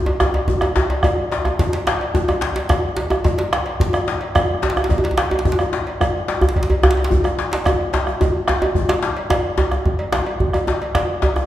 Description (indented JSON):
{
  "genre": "west african traditional, West African drum ensemble",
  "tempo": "145 BPM (dotted quarters)",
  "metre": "12/8",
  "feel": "straight",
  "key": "none",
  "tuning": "none",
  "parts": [
    { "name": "cowbell", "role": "percussion", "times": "0.1-11.4 s", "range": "none", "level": "-27 LUFS", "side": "right 1 dB", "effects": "none" },
    { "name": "djembe", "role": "percussion", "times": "0.1-11.5 s", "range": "none", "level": "-20 LUFS", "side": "right 1 dB", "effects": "none" },
    { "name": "bombo", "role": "percussion", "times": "0.2-11.5 s", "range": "none", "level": "-21 LUFS", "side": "right 1 dB", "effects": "none" },
    { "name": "djembe", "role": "percussion", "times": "0.2-11.5 s", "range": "none", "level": "-23 LUFS", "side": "left 4 dB", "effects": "none" }
  ],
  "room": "wet recital hall reverb, RT60 1.6 s",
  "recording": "recorded in a church or concert hall",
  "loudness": "-16 LUFS",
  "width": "side -13 dB against mid",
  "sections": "0.0-9.3 A section; 9.3-11.5 B section",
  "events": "drum fill 7.7-9.3",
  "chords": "none",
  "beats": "0.20 0.62 | 1.04 1.45 1.87 2.28 | 2.70 3.11 3.53 3.94 | 4.36 4.77 5.18 5.60 | 6.01 6.42 6.83 7.25 | 7.66 8.07 8.48 8.90 | 9.31 9.72 10.13 10.54 | 10.95 11.36"
}